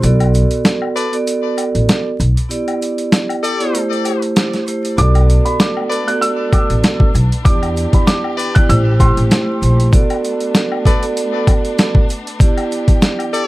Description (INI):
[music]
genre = hip hop, boom-bap hip-hop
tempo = 97 BPM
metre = 4/4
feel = swing 55% on 16ths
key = unclear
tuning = A4 = 444 Hz
[part]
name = vibraphone with medium mallets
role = accompaniment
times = 0.0-13.4 s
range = A3 to D5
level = -19 LUFS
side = right 2 dB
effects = high-pass filter, low-pass filter
[part]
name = upright bass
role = bass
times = 0.0-9.9 s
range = A1 to E2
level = -13 LUFS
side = equal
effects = none
[part]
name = boom bap sampler-style drum kit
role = drums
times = 0.0-13.5 s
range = hi-hat, kick drum, snare drum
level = -14 LUFS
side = equal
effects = overdrive
[part]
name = egg shaker and woodblock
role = percussion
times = 0.0-13.5 s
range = none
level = -29 LUFS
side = left 7 dB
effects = none
[part]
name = warm horn section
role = stabs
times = 1.0-13.5 s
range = G4 to D5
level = -23 LUFS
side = left 3 dB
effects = high-pass filter, low-pass filter, ping-pong delay
[part]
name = dark upright piano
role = melody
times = 5.0-9.9 s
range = B5 to F#6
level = -22 LUFS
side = right 1 dB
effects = high-pass filter, low-pass filter, ping-pong delay
[part]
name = clear studio string section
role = sustained chords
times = 5.0-13.5 s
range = E3 to G4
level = -29 LUFS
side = left 2 dB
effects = high-pass filter, low-pass filter
[sound]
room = light reverb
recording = vinyl crackle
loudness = -12 LUFS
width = side -18 dB against mid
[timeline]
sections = 0.0-13.5 A section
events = break 0.0-5.0; kick muted 5.0-6.2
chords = 0.0 Bm7; 2.5 Em7; 3.7 Am7; 5.0 Bm7; 7.5 Em7; 8.7 Am7; 9.9 Bm7; 12.4 Em7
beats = | 0.03 0.65 1.27 1.89 | 2.50 3.12 3.74 4.36 | 4.98 5.60 6.22 6.83 | 7.45 8.07 8.69 9.31 | 9.93 10.55 11.16 11.78 | 12.40 13.02